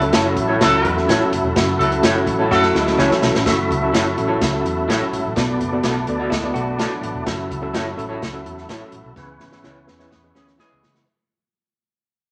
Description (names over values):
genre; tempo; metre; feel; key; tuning
uptempo 1960s-style soul; 126 BPM; 4/4; straight; F# minor; A4 = 442 Hz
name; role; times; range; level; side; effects
overdriven reed electric piano; accompaniment; 0.0-11.0 s; B2 to F#5; -26 LUFS; equal; fast tremolo
percussive tonewheel organ; sustained chords; 0.0-11.1 s; E3 to E4; -26 LUFS; equal; fast rotary speaker, overdrive
vintage muted fingered electric bass; bass; 0.0-11.0 s; E1 to C#3; -29 LUFS; equal; none
swinging big-band drum kit; drums; 0.0-11.1 s; hi-hat, kick drum, snare drum; -25 LUFS; equal; none
electric guitar through a small old amp; stabs; 0.1-10.7 s; E4 to D5; -25 LUFS; equal; none
warm horn section; second line; 0.6-2.9, 10.4-10.9 s; E3 to A4; -21 LUFS; equal; none
vintage hollow-body jazz guitar; riff; 2.5-3.4, 6.3-7.2, 10.1-11.0 s; E3 to F#4; -26 LUFS; equal; none
room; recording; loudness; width
wet studio reverb, RT60 0.8 s; none; -19 LUFS; mono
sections
0.0-3.5 A section; 3.5-11.1 B section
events
drum fill 2.5-3.5, 9.2-11.1; fade-out 3.5-11.1; band accent 9.2-11.1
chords
0.0 F#m7; 5.4 Bm7; 7.3 F#m7; 9.2 C#m7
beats
0.14 0.61 1.09 | 1.56 2.04 2.51 2.99 | 3.46 3.94 4.41 4.88 | 5.36 5.83 6.31 6.79 | 7.26 7.74 8.21 8.69 | 9.16 9.64 10.11 10.59